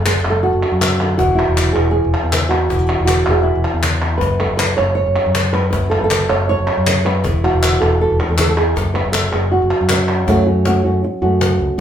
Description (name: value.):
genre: flamenco.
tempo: 158 BPM.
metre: 4/4.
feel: straight.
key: F# minor.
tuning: A4 = 439 Hz.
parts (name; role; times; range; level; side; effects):
flamenco guitar; melody; 0.0-11.8 s; F#2 to C#5; -17 LUFS; right 2 dB; none.
modern bright fingered electric bass; bass; 0.0-11.8 s; E1 to F#2; -18 LUFS; left 1 dB; none.
cajon; percussion; 0.1-11.6 s; none; -23 LUFS; left 3 dB; none.
palmas hand claps; percussion; 0.1-10.3 s; none; -21 LUFS; left 1 dB; none.
room: wet studio reverb, RT60 0.6 s.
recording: band playing live in one room.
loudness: -13 LUFS.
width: side -9 dB against mid.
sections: 0.0-10.3 A section; 10.3-11.8 B section.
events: none.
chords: 0.0 F#m; 1.2 E; 4.2 F#m; 7.2 E; 8.8 F#sus2; 10.3 F#m.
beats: 0.05 0.43 0.81 | 1.19 1.57 1.95 2.33 | 2.71 3.08 3.46 3.84 | 4.22 4.60 4.98 5.36 | 5.73 6.11 6.49 6.87 | 7.25 7.63 8.01 8.38 | 8.76 9.14 9.52 9.90 | 10.27 10.65 11.03 11.41 | 11.79.